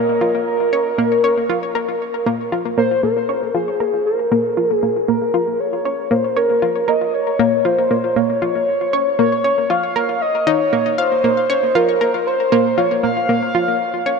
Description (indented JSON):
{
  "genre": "ambient, sequencer-driven space music",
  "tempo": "117 BPM",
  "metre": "4/4",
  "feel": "straight",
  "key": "Bb minor",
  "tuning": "A4 = 442 Hz",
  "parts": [
    { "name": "pulse-width lead", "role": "melody", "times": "0.0-14.2 s", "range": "Ab4 to F5", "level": "-17 LUFS", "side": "equal", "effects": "chorus, ping-pong delay" },
    { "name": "analog pluck", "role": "riff", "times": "0.0-14.2 s", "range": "Bb3 to F5", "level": "-19 LUFS", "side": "equal", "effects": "chorus, ping-pong delay" }
  ],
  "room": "wet huge ambient reverb, RT60 8.7 s",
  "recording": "none",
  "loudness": "-15 LUFS",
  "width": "side -4 dB against mid",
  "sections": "0.0-3.0 A section; 3.0-14.2 A section",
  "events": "none",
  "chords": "0.0 Bbm"
}